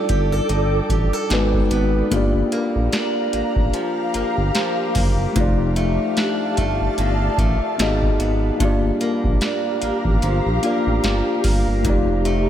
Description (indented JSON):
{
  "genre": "contemporary R&B",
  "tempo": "74 BPM",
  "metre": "4/4",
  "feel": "swing 58% on 16ths",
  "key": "G minor",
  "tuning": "A4 = 440 Hz",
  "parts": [
    { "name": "mellow tine electric piano", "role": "accompaniment", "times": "0.0-12.5 s", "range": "G3 to Eb5", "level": "-23 LUFS", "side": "left 2 dB", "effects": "medium stereo tremolo" },
    { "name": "ethereal airy pad", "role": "sustained chords", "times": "0.0-12.5 s", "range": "G4 to D6", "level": "-25 LUFS", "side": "equal", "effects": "ensemble chorus, built-in reverb, sidechain pumping" },
    { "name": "picked acoustic archtop guitar", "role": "arpeggios", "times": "0.0-12.5 s", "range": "F2 to D5", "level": "-26 LUFS", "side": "right 1 dB", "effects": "analog delay" },
    { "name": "smooth gliding synth bass", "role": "bass", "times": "0.1-12.5 s", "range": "F1 to Bb1", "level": "-22 LUFS", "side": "equal", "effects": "none" },
    { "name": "booming analog drum machine", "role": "drums", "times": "0.1-12.5 s", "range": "hi-hat, kick drum, snare drum", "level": "-22 LUFS", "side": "equal", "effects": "none" }
  ],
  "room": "moderate church reverb, RT60 3.0 s",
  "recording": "dreamy mix soaked in reverb",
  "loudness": "-17 LUFS",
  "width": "side -10 dB against mid",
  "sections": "0.0-12.5 A section",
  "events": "none",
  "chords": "0.0 F13; 1.3 Abm7; 2.1 Gm7; 5.4 F13; 7.8 Abm7; 8.6 Gm7; 11.8 F13"
}